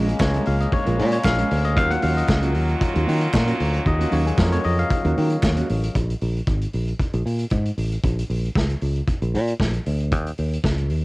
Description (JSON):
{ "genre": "disco", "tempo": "115 BPM", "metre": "4/4", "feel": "straight", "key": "unclear", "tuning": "A4 = 440 Hz", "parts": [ { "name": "bell-like tine electric piano", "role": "accompaniment", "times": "0.0-6.0 s", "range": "Gb3 to Gb5", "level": "-25 LUFS", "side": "left 2 dB", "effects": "medium stereo tremolo" }, { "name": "mellow electric guitar", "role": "accompaniment", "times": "0.0-5.9 s", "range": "Ab3 to Bb4", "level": "-29 LUFS", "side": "right 3 dB", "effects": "none" }, { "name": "muted French horn section", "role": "sustained chords", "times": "0.0-5.9 s", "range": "Db3 to F4", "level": "-28 LUFS", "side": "equal", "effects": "none" }, { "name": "fingered electric bass", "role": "bass", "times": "0.0-11.0 s", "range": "Ab1 to Eb3", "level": "-21 LUFS", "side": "equal", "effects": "none" }, { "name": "vintage drum kit", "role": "drums", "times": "0.1-11.0 s", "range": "hi-hat, kick drum, snare drum", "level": "-25 LUFS", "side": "equal", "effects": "cassette tape" }, { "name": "group handclap", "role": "percussion", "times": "0.2-5.6 s", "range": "none", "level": "-38 LUFS", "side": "right 3 dB", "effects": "none" } ], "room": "light reverb, studio ambience", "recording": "home recording on cassette", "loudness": "-19 LUFS", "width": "side -22 dB against mid", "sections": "0.0-5.9 A section; 5.9-11.0 B section", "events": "tine electric piano solo 0.0-5.9", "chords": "0.0 Bbm7; 1.8 Ebm7; 5.9 N.C.; 10.1 Eb5" }